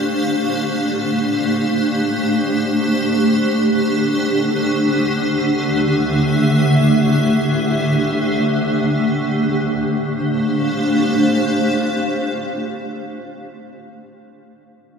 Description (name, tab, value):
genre	ambient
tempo	free time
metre	none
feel	none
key	D minor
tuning	A4 = 444 Hz
part	granular cloud pad	sustained chords	0.0-13.1 s	D3 to F5	-16 LUFS	equal	built-in reverb
room	wet cathedral reverb, RT60 4.8 s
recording	none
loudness	-15 LUFS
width	side -6 dB against mid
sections	0.0-9.3 A section; 9.3-12.3 B section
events	none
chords	0.0 Dm; 3.3 Cadd9/D; 9.3 Dm